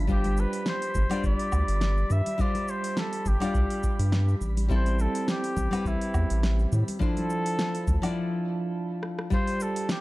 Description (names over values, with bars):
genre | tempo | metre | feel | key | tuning
sunset chillout | 104 BPM | 4/4 | swing 55% on 16ths | unclear | A4 = 440 Hz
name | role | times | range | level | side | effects
nylon-string guitar | accompaniment | 0.0-10.0 s | F3 to D5 | -30 LUFS | equal | auto-pan
round analog bass | bass | 0.0-8.0 s | G1 to A2 | -25 LUFS | equal | none
wind-like tuned noise texture | texture | 0.0-8.2 s | B5 | -48 LUFS | right 1 dB | none
clear flugelhorn | melody | 0.1-10.0 s | E4 to E5 | -32 LUFS | equal | tape echo
electronic kick drum | drums | 0.1-9.4 s | none | -29 LUFS | equal | overdrive, small room ambience
smooth R&B drum kit | drums | 0.1-10.0 s | hi-hat, rim click, shaker, snare drum, woodblock | -34 LUFS | equal | overdrive, small room ambience
congas | percussion | 0.3-8.0 s | none | -38 LUFS | equal | none
room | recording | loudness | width
digital ambience | dry, gritty hardware recording | -24 LUFS | side -19 dB against mid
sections
0.0-9.3 A section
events
break 8.2-9.3; drum fill 9.0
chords
0.1 G7sus4; 4.7 Am7; 7.0 Dm9; 9.3 G7sus4